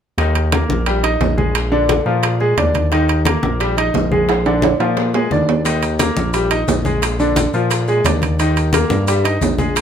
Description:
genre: latin, salsa.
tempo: 175 BPM.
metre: 4/4.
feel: straight.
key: Eb major.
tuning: A4 = 440 Hz.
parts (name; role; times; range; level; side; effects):
bright grand piano; accompaniment; 0.2-9.8 s; D3 to Eb5; -18 LUFS; equal; none.
smooth synth bass; bass; 0.2-9.8 s; Bb1 to Bb2; -19 LUFS; equal; none.
bongos; percussion; 0.2-9.8 s; none; -26 LUFS; left 7 dB; none.
congas; percussion; 0.2-9.8 s; none; -22 LUFS; left 2 dB; none.
timbales; percussion; 0.2-9.8 s; none; -22 LUFS; right 7 dB; none.
maracas; percussion; 5.7-9.8 s; none; -30 LUFS; left 1 dB; none.
room: moderate studio reverb, RT60 0.6 s.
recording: none.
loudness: -14 LUFS.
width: side -8 dB against mid.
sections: 0.2-9.8 A section.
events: drum fill 4.3-5.7.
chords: 0.2 Eb; 1.6 Bb7; 2.9 Eb; 4.3 Bb7; 5.7 Eb; 7.0 Bb7; 8.4 Eb.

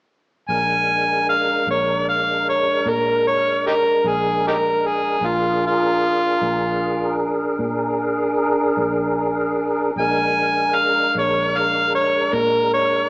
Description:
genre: slow blues.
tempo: 51 BPM (dotted quarters).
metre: 12/8.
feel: straight.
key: Bb mixolydian.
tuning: A4 = 439 Hz.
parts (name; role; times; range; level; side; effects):
overdriven harmonica; melody; 0.5-13.1 s; Eb4 to Ab5; -17 LUFS; equal; none.
tonewheel organ; sustained chords; 0.5-13.1 s; Ab3 to Bb4; -22 LUFS; equal; slow rotary speaker, chorus vibrato.
vintage muted fingered electric bass; bass; 0.5-13.1 s; Bb1 to Bb2; -31 LUFS; equal; none.
room: wet stone room reverb, RT60 1.3 s.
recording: band playing live in one room, small speaker sound.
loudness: -17 LUFS.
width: side -29 dB against mid.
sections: 0.5-13.1 A section.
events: none.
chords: 0.5 Bb7.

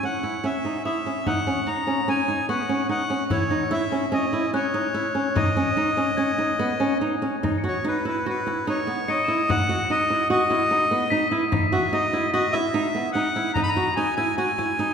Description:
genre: contemporary instrumental, chamber music in an uneven meter.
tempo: 147 BPM.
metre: 5/4.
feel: straight.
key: unclear.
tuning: A4 = 439 Hz.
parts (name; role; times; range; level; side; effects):
accordion; melody; 0.0-14.9 s; B4 to B5; -25 LUFS; left 1 dB; none.
flamenco guitar; arpeggios; 0.0-14.9 s; Cb4 to F#4; -24 LUFS; right 2 dB; none.
crotales; texture; 0.0-14.7 s; Db6 to E7; -32 LUFS; left 5 dB; none.
frame drum; percussion; 0.2-14.8 s; none; -30 LUFS; left 2 dB; none.
room: wet church reverb, RT60 2.9 s.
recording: recorded in a church or concert hall.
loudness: -21 LUFS.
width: side -7 dB against mid.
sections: 0.0-7.4 A section; 7.4-14.9 B section.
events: none.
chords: 0.0 Dbm; 1.3 Ab7(no3) (rootless); 3.3 Dbm; 5.4 Ab5; 7.4 E5.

